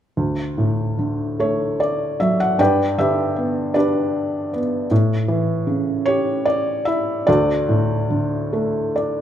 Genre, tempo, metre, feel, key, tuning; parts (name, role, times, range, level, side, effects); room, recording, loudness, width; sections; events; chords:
classical, lyrical solo piano; 51 BPM (dotted quarters); 6/8; uneven beats, rubato; D major; A4 = 440 Hz
felt-muted upright piano; solo; 0.2-9.2 s; D2 to G5; -18 LUFS; equal
light reverb; minimal, uncompressed stereo recording; -18 LUFS; side -10 dB against mid
0.2-9.2 A section
felt piano fill 8.5-9.2
0.2 D; 2.6 G; 4.9 A7; 7.3 D